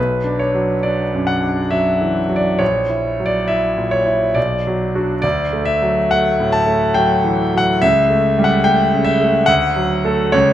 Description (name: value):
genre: classical, romantic character piece for solo piano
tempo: 70 BPM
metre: 3/4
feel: rubato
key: B minor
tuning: A4 = 440 Hz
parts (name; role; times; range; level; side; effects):
- bright concert grand piano; solo; 0.0-10.5 s; A#1 to A5; -14 LUFS; equal; none
room: moderate recital hall reverb, RT60 1.4 s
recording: none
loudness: -14 LUFS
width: side -11 dB against mid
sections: 0.0-10.5 A section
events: none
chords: 0.0 Bm; 2.6 F#7/A#; 4.4 Bm; 5.2 D; 7.8 A7/C#; 9.5 D